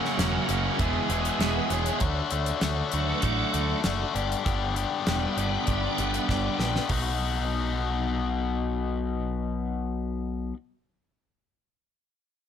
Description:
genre	classic rock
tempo	98 BPM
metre	4/4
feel	straight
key	unclear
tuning	A4 = 440 Hz
part	tonewheel organ	sustained chords	0.0-6.9 s	C#3 to F#5	-31 LUFS	right 6 dB	overdrive, chorus vibrato, slow rotary speaker
part	biting overdriven guitar	riff	0.0-10.6 s	E2 to G#4	-28 LUFS	left 8 dB	none
part	distorted electric guitar	riff	0.0-2.0 s	F#2 to E4	-30 LUFS	right 18 dB	distortion
part	damped 70s drum kit	drums	0.1-7.0 s	hi-hat, kick drum, snare drum	-31 LUFS	equal	none
part	growling picked electric bass	bass	0.2-10.5 s	E1 to D2	-30 LUFS	right 1 dB	overdrive
room	light reverb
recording	none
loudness	-25 LUFS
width	side -8 dB against mid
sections	0.0-6.9 A section; 6.9-9.3 B section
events	tonewheel organ solo 0.0-6.9; drum fill 6.3-6.9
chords	0.0 F#; 0.8 E; 2.0 D; 4.1 G; 6.9 B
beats	0.18 0.79 1.40 | 2.01 2.62 3.23 3.84 | 4.45 5.06 5.67 6.28 | 6.89 7.50 8.11 8.72

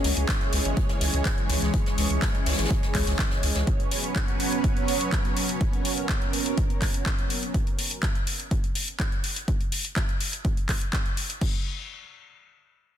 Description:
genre	progressive house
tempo	124 BPM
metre	4/4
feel	straight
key	unclear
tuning	A4 = 441 Hz
part	lush unison pad	sustained chords	0.0-7.5 s	E3 to C#5	-29 LUFS	right 2 dB	chorus, phaser, sidechain pumping
part	round analog bass	bass	0.0-3.6 s	G#1 to C#2	-26 LUFS	equal	sidechain pumping
part	house drum kit	drums	0.0-11.5 s	crash cymbal, handclaps, hi-hat	-30 LUFS	left 2 dB	sidechain pumping on hats, studio reverb, sidechain pumping on cymbals
part	jazz brush drum kit	drums	0.0-3.7 s	hi-hat, snare drum	-36 LUFS	left 2 dB	high-pass filter on hats, studio reverb, soft clipping on snare, high-pass filter on snare, high-pass filter on room
part	electronic kick drum	drums	0.3-11.5 s	none	-26 LUFS	equal	studio reverb
room	little or no reverb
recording	dense, heavily limited modern master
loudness	-23 LUFS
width	side -10 dB against mid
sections	0.0-11.4 A section; 11.4-13.0 B section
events	none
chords	0.0 C#m; 3.7 Bsus2; 7.5 N.C.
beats	0.29 0.77 1.25 | 1.74 2.22 2.71 3.19 | 3.67 4.16 4.64 5.12 | 5.61 6.09 6.58 7.06 | 7.54 8.03 8.51 8.99 | 9.48 9.96 10.45 10.93 | 11.41

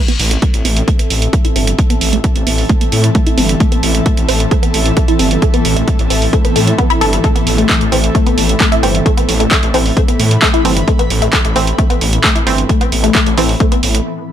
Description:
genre	driving peak-time techno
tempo	132 BPM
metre	4/4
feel	straight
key	A minor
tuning	A4 = 440 Hz
part	resonant blip pluck	riff	0.0-13.8 s	A3 to A4	-18 LUFS	left 2 dB	phaser, tube saturation, sidechain pumping, dub echo
part	swarming drone	drone	1.2-14.1 s	A2 to E3	-22 LUFS	left 1 dB	built-in reverb, sidechain pumping
part	airy breathy pad	texture	0.2-14.1 s	C4 to B5	-22 LUFS	right 2 dB	chorus, sidechain pumping
part	punchy analog drum machine	drums	0.1-14.0 s	handclaps, hi-hat	-17 LUFS	right 2 dB	overdrive, sidechain pumping on hats, sidechain pumping on cymbals
part	detuned saw bass	bass	0.2-14.0 s	G1 to A2	-15 LUFS	equal	sidechain pumping
part	electronic kick drum	drums	0.4-13.7 s	none	-14 LUFS	equal	overdrive
part	filtered dub chord stab	stabs	7.9-13.5 s	E3 to C4	-21 LUFS	right 3 dB	chorus, sidechain pumping, ping-pong delay
room	little or no reverb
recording	none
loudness	-10 LUFS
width	side -10 dB against mid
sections	0.0-14.3 A section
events	filter sweep on synth arpeggio sound 0.0-14.3; break 14.1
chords	0.0 Am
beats	0.42 0.88 1.33 | 1.78 2.24 2.69 3.15 | 3.60 4.06 4.51 4.97 | 5.42 5.88 6.33 6.79 | 7.24 7.69 8.15 8.60 | 9.06 9.51 9.97 10.42 | 10.88 11.33 11.79 12.24 | 12.69 13.15 13.60 14.06

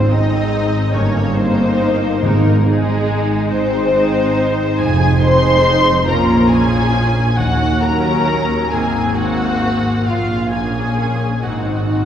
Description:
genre	classical, slow romantic movement for symphony orchestra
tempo	46 BPM (dotted quarters)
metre	6/8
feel	uneven beats, rubato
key	unclear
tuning	A4 = 440 Hz
part	muted symphonic violin section	melody	0.0-12.1 s	Ab4 to C6	-21 LUFS	left 2 dB	none
part	muted symphonic violin section	second line	0.0-12.1 s	Ab3 to C5	-21 LUFS	left 1 dB	none
part	muted symphonic viola section	accompaniment	0.0-12.1 s	F3 to Eb4	-21 LUFS	right 1 dB	none
part	concert harp	arpeggios	0.0-12.1 s	F2 to Eb5	-24 LUFS	left 2 dB	none
part	muted symphonic cello section	bass	0.0-12.1 s	Eb2 to Bb2	-20 LUFS	right 1 dB	none
part	muted symphonic double bass section	bass	0.0-12.1 s	F1 to Eb2	-20 LUFS	right 1 dB	none
part	timpani	percussion	0.0-3.5 s	Ab2	-23 LUFS	equal	none
room	wet church reverb, RT60 3.0 s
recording	recorded in a church or concert hall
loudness	-13 LUFS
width	side -9 dB against mid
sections	0.0-12.1 A section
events	none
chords	0.0 Ab; 0.9 Eb/G; 2.2 Ab; 4.8 Fm7; 6.1 Bbm; 7.4 Ebm7; 8.7 Ab9; 10.1 Bbm; 11.4 Ab7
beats	0.93 | 2.23 3.50 | 4.79 6.08 | 7.38 8.71 | 10.06 11.42

